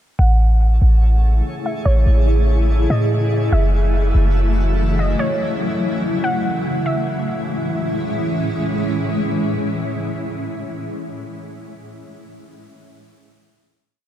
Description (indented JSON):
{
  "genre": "hip hop, atmospheric cloud-rap",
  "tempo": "144 BPM",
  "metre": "4/4",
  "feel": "half-time",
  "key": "A major",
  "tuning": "A4 = 440 Hz",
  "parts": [
    { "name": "warbly dusty pluck", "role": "melody", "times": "0.2-8.1 s", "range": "C#5 to F#5", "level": "-27 LUFS", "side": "equal", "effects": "chorus, low-pass filter, diffuse ambient delay" },
    { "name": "granular cloud pad", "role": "sustained chords", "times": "1.1-11.0 s", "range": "A2 to G#4", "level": "-22 LUFS", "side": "equal", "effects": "built-in reverb, lush chorus, low-pass filter" },
    { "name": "warm 808-style bass", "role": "bass", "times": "0.2-5.2 s", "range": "F#1 to A2", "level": "-14 LUFS", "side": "equal", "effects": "none" },
    { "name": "twinkling granular texture", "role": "texture", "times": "0.7-5.2 s", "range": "A3 to E5", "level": "-34 LUFS", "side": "equal", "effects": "built-in reverb, wide subtle chorus" }
  ],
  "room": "moderate huge ambient reverb, RT60 6.2 s",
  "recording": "dreamy mix soaked in reverb",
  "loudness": "-16 LUFS",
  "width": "side -11 dB against mid",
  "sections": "0.2-6.9 breakdown; 6.9-10.2 final chord",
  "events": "filter sweep 0.2-6.9",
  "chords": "0.2 Amaj7; 3.5 F#m7; 6.9 Amaj7"
}